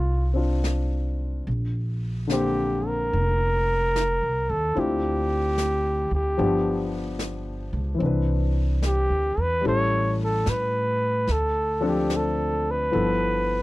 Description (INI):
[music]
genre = jazz ballad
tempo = 73 BPM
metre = 4/4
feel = swing 66% on 8ths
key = unclear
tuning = A4 = 440 Hz
[part]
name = breathy trumpet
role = melody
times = 0.0-13.6 s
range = F4 to C#5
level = -24 LUFS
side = right 1 dB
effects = none
[part]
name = warm baby grand piano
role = accompaniment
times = 0.0-13.6 s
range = D3 to C5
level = -28 LUFS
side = left 3 dB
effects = none
[part]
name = upright bass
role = bass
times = 0.0-13.6 s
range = F1 to A2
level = -26 LUFS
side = equal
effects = none
[part]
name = jazz brush drum kit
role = drums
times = 0.6-13.6 s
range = brushed snare drum, hi-hat, snare drum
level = -36 LUFS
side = equal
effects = none
[sound]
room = little or no reverb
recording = dry, close 1970s-style studio recording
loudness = -22 LUFS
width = side -18 dB against mid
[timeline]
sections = 0.0-13.6 A section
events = none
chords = 0.0 F7; 1.5 Bbadd9; 4.8 Dm9; 6.4 G7; 8.0 Cmaj9; 9.6 A7; 11.3 Dm7; 12.9 G13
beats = 0.64 | 1.47 2.29 3.12 3.95 | 4.76 5.58 6.39 7.19 | 8.01 8.82 9.64 10.46 | 11.27 12.09 12.92